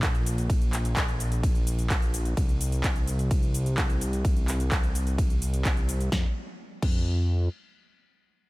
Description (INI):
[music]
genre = EDM, festival progressive house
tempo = 128 BPM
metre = 4/4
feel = straight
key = unclear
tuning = A4 = 440 Hz
[part]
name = fat analog bass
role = bass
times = 0.0-7.5 s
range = Bb1 to F2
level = -27 LUFS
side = equal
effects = sidechain pumping
[part]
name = big-room dance drum kit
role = drums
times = 0.0-7.0 s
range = crash cymbal, handclaps, hi-hat, ride cymbal, shaker, snare drum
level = -33 LUFS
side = equal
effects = none
[part]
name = electronic kick drum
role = drums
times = 0.0-7.0 s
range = none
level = -25 LUFS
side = equal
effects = none
[sound]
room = digital ambience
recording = none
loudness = -24 LUFS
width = side -20 dB against mid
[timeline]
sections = 0.0-6.1 A section; 6.1-8.5 B section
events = drop 0.0-6.1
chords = none